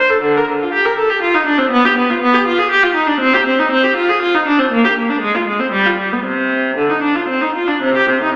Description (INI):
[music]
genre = classical, baroque-style suite movement for unaccompanied viola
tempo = 110-124 BPM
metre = 3/4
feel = rubato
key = C minor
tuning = A4 = 441 Hz
[part]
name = rich viola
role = solo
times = 0.0-8.3 s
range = C3 to Bb4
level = -14 LUFS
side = equal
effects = none
[sound]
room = wet scoring stage reverb, RT60 1.6 s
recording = none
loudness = -14 LUFS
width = mono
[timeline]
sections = 0.0-7.8 A section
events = none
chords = none